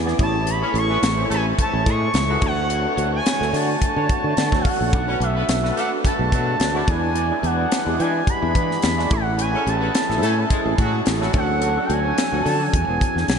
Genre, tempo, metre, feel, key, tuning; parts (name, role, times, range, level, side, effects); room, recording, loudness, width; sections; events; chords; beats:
polished 1980s jazz-funk pop; 108 BPM; 4/4; swing 54% on 16ths; A major; A4 = 440 Hz
barky tine electric piano; accompaniment; 0.0-13.4 s; E3 to D5; -25 LUFS; equal; ensemble chorus
sustaining fretless electric bass; bass; 0.0-13.4 s; E1 to E3; -23 LUFS; equal; wide subtle chorus
electric guitar at the edge of break-up; riff; 0.1-13.3 s; D4 to E5; -32 LUFS; right 4 dB; analog chorus
crisp fusion drum kit; drums; 0.1-13.4 s; hi-hat, kick drum, snare drum; -23 LUFS; equal
expressive portamento lead; melody; 0.2-13.4 s; E5 to C#6; -24 LUFS; right 1 dB; chorus, ping-pong delay
warm horn section; second line; 0.6-11.4 s; E3 to C#5; -32 LUFS; left 1 dB
wet huge ambient reverb, RT60 7.3 s; dreamy mix soaked in reverb, nothing above 10.7 kHz; -18 LUFS; side -6 dB against mid
0.0-13.4 A section
0.2 Amaj7; 2.4 Dmaj7; 4.9 Bm7; 6.9 E7; 9.1 Amaj7; 11.3 Dmaj7; 12.7 E7
| 0.47 1.03 1.58 2.14 | 2.70 3.26 3.81 4.37 | 4.93 5.49 6.04 6.60 | 7.16 7.71 8.27 8.83 | 9.39 9.95 10.50 11.06 | 11.62 12.18 12.73 13.29